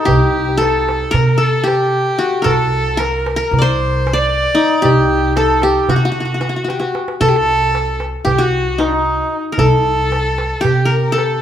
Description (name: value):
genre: Turkish makam ensemble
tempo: 228 BPM (eighths)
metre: 9/8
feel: straight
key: C makam nikriz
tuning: A4 = 439 Hz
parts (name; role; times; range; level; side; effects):
- qanun; melody; 0.0-11.4 s; Eb4 to D5; -16 LUFS; left 1 dB; none
- warm violin; second line; 0.0-11.4 s; D4 to D5; -20 LUFS; left 2 dB; none
- upright bass; bass; 0.1-11.4 s; C2 to C3; -20 LUFS; right 1 dB; none
- darbuka; percussion; 0.1-11.3 s; none; -21 LUFS; right 2 dB; none
room: moderate recital hall reverb, RT60 1.4 s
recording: minimal, uncompressed stereo recording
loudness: -13 LUFS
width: side -10 dB against mid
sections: 0.0-11.4 A section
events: drum fill 6.7-7.2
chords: none